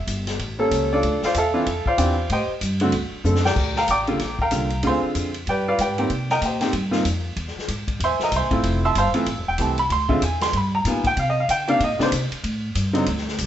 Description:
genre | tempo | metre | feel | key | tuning
jazz, small-group swing and bop | 189 BPM | 4/4 | swing 61% on 8ths | D minor, G minor from 3.6 s | A4 = 435 Hz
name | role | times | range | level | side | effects
clear baby grand piano | accompaniment | 0.0-13.1 s | C3 to E6 | -21 LUFS | equal | none
upright bass | bass | 0.0-13.5 s | E1 to D3 | -25 LUFS | equal | none
swinging big-band drum kit | drums | 0.1-13.5 s | crash cymbal, hi-hat, kick drum, ride cymbal, snare drum | -28 LUFS | left 1 dB | none
room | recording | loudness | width
moderate stone room reverb, RT60 1.0 s | band playing live in one room, nothing above 8.0 kHz | -19 LUFS | side -11 dB against mid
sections
0.0-3.6 A section; 3.6-13.5 A section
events
drum fill 3.2-3.6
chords
0.4 A7b9; 1.0 Dm9; 2.3 Am7b5; 2.9 D7; 3.6 Gm7; 4.8 Dm7b5; 5.5 G7b9; 6.1 Cm7; 7.4 C7b13; 8.6 Fmaj7; 9.9 Dm7b5; 10.5 G7alt; 11.2 Cm9; 12.4 Am7b5

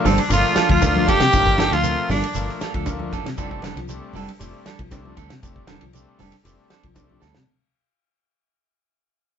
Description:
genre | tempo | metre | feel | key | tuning
afrobeat | 117 BPM | 4/4 | straight | unclear | A4 = 439 Hz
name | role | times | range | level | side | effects
combo organ | accompaniment | 0.0-7.2 s | F3 to D4 | -29 LUFS | left 4 dB | none
clean electric guitar | stabs | 0.0-7.4 s | F3 to A4 | -27 LUFS | right 7 dB | none
raspy tenor saxophone | melody | 0.1-2.6 s | C4 to G4 | -20 LUFS | equal | none
brilliant trumpet | second line | 0.1-2.6 s | C4 to G4 | -28 LUFS | right 2 dB | none
clean electric guitar | arpeggios | 0.1-7.4 s | C3 to G3 | -27 LUFS | left 3 dB | none
fingered electric bass | bass | 0.1-7.3 s | F1 to D2 | -25 LUFS | equal | none
damped 70s drum kit | drums | 0.1-7.5 s | hi-hat, kick drum, ride cymbal, snare drum | -26 LUFS | equal | none
congas | percussion | 0.1-7.3 s | none | -28 LUFS | right 2 dB | none
shekere | percussion | 0.1-7.3 s | none | -32 LUFS | right 7 dB | none
room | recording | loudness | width
wet small room reverb, RT60 0.5 s | band playing live in one room, tape saturation, nothing above 7.8 kHz | -17 LUFS | side -8 dB against mid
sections
0.0-7.5 A section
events
fade-out 0.0-7.5; drum fill 7.2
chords
0.0 Gm9; 3.4 F69

